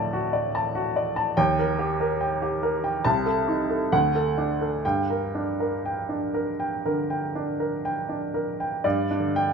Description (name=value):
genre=classical, romantic character piece for solo piano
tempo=59-73 BPM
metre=4/4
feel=rubato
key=G minor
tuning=A4 = 443 Hz
part: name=clear upright piano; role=solo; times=0.0-9.5 s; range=C2 to A5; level=-23 LUFS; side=right 1 dB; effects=none
room=moderate recital hall reverb, RT60 1.5 s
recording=minimal, uncompressed stereo recording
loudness=-23 LUFS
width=side -5 dB against mid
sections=0.0-8.8 A section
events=none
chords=0.0 D; 1.4 Eb; 3.0 Adim/C; 3.9 D; 4.8 Gm; 8.8 G5